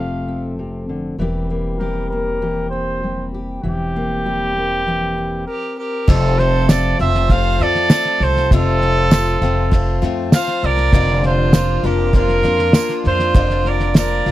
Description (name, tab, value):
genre	indie folk with a building arrangement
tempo	99 BPM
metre	4/4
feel	straight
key	F major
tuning	A4 = 441 Hz
part	mellow trumpet	melody	0.0-14.3 s	G4 to F5	-20 LUFS	right 1 dB	none
part	fingerpicked steel-string acoustic guitar	accompaniment	0.0-7.9 s	F2 to A4	-24 LUFS	left 2 dB	none
part	upright bass	bass	0.0-14.3 s	E1 to F2	-20 LUFS	equal	none
part	clear fiddle	second line	5.5-14.3 s	F4 to C5	-27 LUFS	right 6 dB	none
part	picked acoustic archtop guitar	accompaniment	6.1-14.3 s	F2 to F4	-23 LUFS	left 8 dB	none
part	pedal harmonium	sustained chords	6.1-14.3 s	F3 to A5	-29 LUFS	right 3 dB	stereo widening
part	cloth-damped thuddy drum kit	drums	6.1-14.3 s	crash cymbal, kick drum, snare drum	-14 LUFS	equal	none
part	tambourine	percussion	6.7-14.1 s	none	-30 LUFS	right 20 dB	none
room	little or no reverb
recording	dry, close 1970s-style studio recording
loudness	-15 LUFS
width	side -14 dB against mid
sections	0.0-6.1 A section; 6.1-14.3 B section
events	stop 5.5-6.1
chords	0.0 F; 1.2 C7/E; 6.1 F; 10.9 Bb/F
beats	0.57 | 1.19 1.80 2.41 3.02 | 3.63 4.25 4.86 5.47 | 6.08 6.68 7.29 7.90 | 8.51 9.11 9.72 10.32 | 10.93 11.53 12.14 12.74 | 13.35 13.95